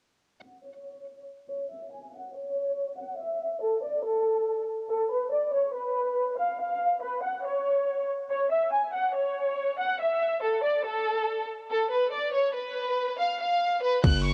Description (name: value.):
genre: hip hop, drill.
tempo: 141 BPM.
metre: 4/4.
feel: half-time.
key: unclear.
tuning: A4 = 443 Hz.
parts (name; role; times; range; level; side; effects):
warm studio violin section; melody; 0.4-14.3 s; A4 to F#6; -29 LUFS; equal; low-pass filter, cassette tape, tape echo.
distorted 808-style bass; bass; 14.0-14.3 s; F#1; -27 LUFS; equal; distortion.
drill drum kit; drums; 14.0-14.1 s; crash cymbal, hi-hat, kick drum; -26 LUFS; equal; cassette tape.
room: light reverb.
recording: home recording on cassette.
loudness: -28 LUFS.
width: mono.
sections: 0.4-14.0 A section.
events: filter sweep on violin section 0.4-14.0.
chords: none.